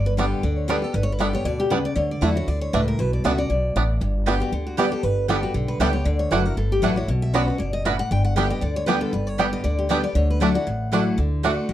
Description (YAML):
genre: bluegrass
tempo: 234 BPM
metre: 4/4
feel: swing 55% on 8ths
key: unclear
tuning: A4 = 440 Hz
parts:
  - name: picked steel-string acoustic guitar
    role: melody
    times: 0.0-11.1 s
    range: F#4 to G5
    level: -27 LUFS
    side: left 1 dB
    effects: none
  - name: picked steel-string acoustic guitar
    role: accompaniment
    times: 0.0-11.7 s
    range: G2 to G4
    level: -25 LUFS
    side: left 2 dB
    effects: none
  - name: upright bass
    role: bass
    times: 0.0-11.7 s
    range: F#1 to E2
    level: -24 LUFS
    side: equal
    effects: none
  - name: bluegrass banjo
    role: arpeggios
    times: 0.2-11.5 s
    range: G3 to D4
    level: -25 LUFS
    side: right 4 dB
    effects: none
  - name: mandolin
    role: stabs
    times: 4.3-11.5 s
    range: A3 to B5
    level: -27 LUFS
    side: right 7 dB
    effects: none
room: moderate studio ambience, RT60 0.5 s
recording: dark, warm production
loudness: -20 LUFS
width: side -12 dB against mid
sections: 0.0-11.7 A section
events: none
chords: 0.0 G; 2.0 Dadd9; 3.0 Bmadd9; 4.0 G; 6.1 Dadd9; 7.1 Bmadd9; 8.1 G; 10.2 Dadd9; 11.2 D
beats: 0.18 0.43 0.69 | 0.94 1.20 1.45 1.71 | 1.96 2.22 2.48 2.73 | 2.99 3.24 3.50 3.76 | 4.01 4.27 4.52 4.78 | 5.04 5.29 5.55 5.80 | 6.06 6.32 6.57 6.83 | 7.09 7.34 7.60 7.85 | 8.11 8.37 8.62 8.88 | 9.13 9.39 9.64 9.90 | 10.16 10.41 10.67 10.93 | 11.18 11.44 11.69